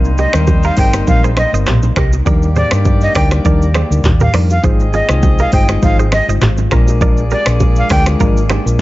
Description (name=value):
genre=afrobeats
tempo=101 BPM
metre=4/4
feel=swing 55% on 16ths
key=C minor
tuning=A4 = 441 Hz
part: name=warm horn section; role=second line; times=0.0-8.8 s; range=G3 to Eb5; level=-25 LUFS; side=left 2 dB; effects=none
part: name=mellow tine electric piano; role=accompaniment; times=0.0-8.8 s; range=G3 to C5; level=-21 LUFS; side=left 4 dB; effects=none
part: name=deep dark ambient pad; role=sustained chords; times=0.0-8.8 s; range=C3 to D5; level=-28 LUFS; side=right 1 dB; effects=none
part: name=direct-recorded clean electric guitar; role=riff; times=0.0-8.6 s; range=Eb4 to Eb5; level=-24 LUFS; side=right 6 dB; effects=spring reverb, digital delay
part: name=hollow-body short-scale fingered electric bass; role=bass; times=0.0-8.8 s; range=G1 to G2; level=-14 LUFS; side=equal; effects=none
part: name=afro-pop drum kit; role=drums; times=0.0-8.8 s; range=finger snaps, handclaps, hi-hat, kick drum, rim click, shaker, toms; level=-15 LUFS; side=equal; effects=none
part: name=breathy bright jazz flute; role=melody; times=0.2-8.0 s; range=D5 to G5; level=-19 LUFS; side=equal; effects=digital delay
part: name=bongos and congas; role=percussion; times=0.2-8.7 s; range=none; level=-23 LUFS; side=right 4 dB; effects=none
room=digital ambience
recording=dark, warm production, nothing above 7.6 kHz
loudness=-10 LUFS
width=side -17 dB against mid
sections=0.0-8.8 A section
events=none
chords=0.0 Cm7; 2.3 Ebmaj7; 4.6 Ab6; 6.7 Bb7